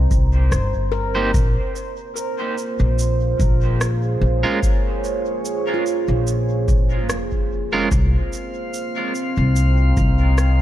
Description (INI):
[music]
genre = ambient dub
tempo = 73 BPM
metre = 4/4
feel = swing 55% on 16ths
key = Bb dorian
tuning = A4 = 439 Hz
[part]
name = deep dark ambient pad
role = sustained chords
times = 0.0-10.6 s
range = Bb3 to Bb5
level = -25 LUFS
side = right 2 dB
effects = chorus, built-in reverb, vintage 12-bit sampler grit
[part]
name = handpan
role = arpeggios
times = 0.0-9.1 s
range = F4 to C5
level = -30 LUFS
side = left 1 dB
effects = dub echo
[part]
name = upright bass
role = bass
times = 0.0-10.6 s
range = F1 to C2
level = -18 LUFS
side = equal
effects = none
[part]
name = electronic kick drum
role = drums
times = 0.1-10.2 s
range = none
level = -21 LUFS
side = equal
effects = small room reverb
[part]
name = electronic shaker and rim click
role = drums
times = 0.1-10.6 s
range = none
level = -29 LUFS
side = right 1 dB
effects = small room reverb, dub echo
[part]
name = semi-hollow electric guitar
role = stabs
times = 1.1-7.9 s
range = Ab3 to C5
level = -27 LUFS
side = right 3 dB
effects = tremolo, low-pass filter, dub echo
[part]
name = drifting glass-harmonics texture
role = texture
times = 8.2-10.6 s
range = F4 to F5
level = -28 LUFS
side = left 3 dB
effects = chorus, built-in reverb
[sound]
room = little or no reverb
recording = none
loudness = -17 LUFS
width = side -13 dB against mid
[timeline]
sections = 0.0-10.6 A section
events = filter sweep on clean electric guitar 0.0-10.6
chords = 0.0 Cm7; 1.3 Bbm7; 7.9 Cm7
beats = 0.52 | 1.34 2.16 2.98 3.81 | 4.63 5.45 6.27 7.09 | 7.92 8.74 9.56 10.38